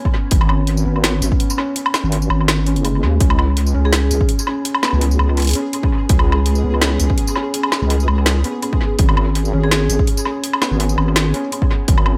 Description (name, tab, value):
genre	half-time drum and bass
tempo	166 BPM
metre	4/4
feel	swing 54% on 16ths, half-time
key	unclear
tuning	A4 = 440 Hz
part	felt-muted upright piano	arpeggios	0.0-12.2 s	G#3 to C#4	-26 LUFS	equal	vintage 12-bit sampler grit, dub echo
part	electronic kick drum	drums	0.1-12.0 s	none	-18 LUFS	equal	studio reverb
part	deep soft wobble bass	bass	0.3-12.2 s	F#1 to D#2	-19 LUFS	equal	chorus
part	drum and bass drum kit	drums	0.3-12.1 s	hi-hat, snare drum, tambourine, woodblock	-23 LUFS	equal	overdrive, studio reverb, dub echo
part	pulsing gated texture	texture	3.2-12.2 s	G#4	-31 LUFS	equal	chorus, built-in reverb
part	vibraphone with medium hard mallets	melody	3.9-4.2, 9.6-10.0 s	G#4	-31 LUFS	equal	dub echo
room	light reverb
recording	echo-heavy mix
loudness	-17 LUFS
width	mono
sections	0.0-12.2 A section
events	kick drops out 2.8-3.2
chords	0.0 G#m; 3.2 C#5; 9.0 G#m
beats	| 0.31 0.68 1.04 1.40 | 1.76 2.12 2.48 2.84 | 3.21 3.57 3.93 4.29 | 4.65 5.01 5.37 5.74 | 6.10 6.46 6.82 7.18 | 7.54 7.90 8.27 8.63 | 8.99 9.35 9.71 10.07 | 10.43 10.80 11.16 11.52 | 11.88